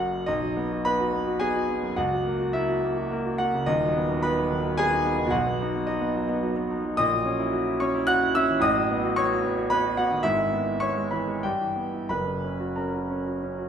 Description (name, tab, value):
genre	classical, romantic character piece for solo piano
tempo	89-113 BPM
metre	3/4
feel	rubato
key	B major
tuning	A4 = 436 Hz
part	clear concert grand piano	solo	0.0-13.7 s	D#1 to F#6	-23 LUFS	equal	none
room	wet recital hall reverb, RT60 1.5 s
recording	minimal, uncompressed stereo recording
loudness	-23 LUFS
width	side -8 dB against mid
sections	0.3-13.7 A section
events	none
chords	0.3 B; 2.0 F#7/C#; 3.7 B/D#; 5.3 B; 7.0 F#7/A#; 8.6 B7/A; 10.2 E/G#; 11.4 Em/G; 12.1 F#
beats	| 0.26 0.84 1.40 | 1.97 2.54 3.10 | 3.67 4.24 4.77 | 5.32 5.86 6.42 | 6.97 7.51 8.05 | 8.60 9.15 9.70 | 10.23 10.80 11.43 | 12.08 12.75 13.41